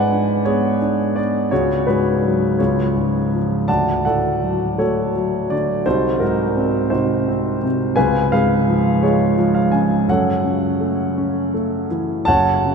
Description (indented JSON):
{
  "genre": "classical, lyrical solo piano",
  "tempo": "56 BPM (dotted quarters)",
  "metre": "6/8",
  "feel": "rubato",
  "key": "F# harmonic minor",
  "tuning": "A4 = 440 Hz",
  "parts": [
    { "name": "dark grand piano", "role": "solo", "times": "0.0-12.7 s", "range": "F#1 to A5", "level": "-16 LUFS", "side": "equal", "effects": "none" }
  ],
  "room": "wet cathedral reverb, RT60 5.5 s",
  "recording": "in a vast, echoing space",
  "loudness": "-16 LUFS",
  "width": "side -5 dB against mid",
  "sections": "0.0-12.3 A section",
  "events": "none",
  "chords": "0.0 G#dim; 1.5 C#sus4; 2.6 C#; 3.7 D; 5.9 G#7/B#; 8.0 C#7; 10.1 F#m7"
}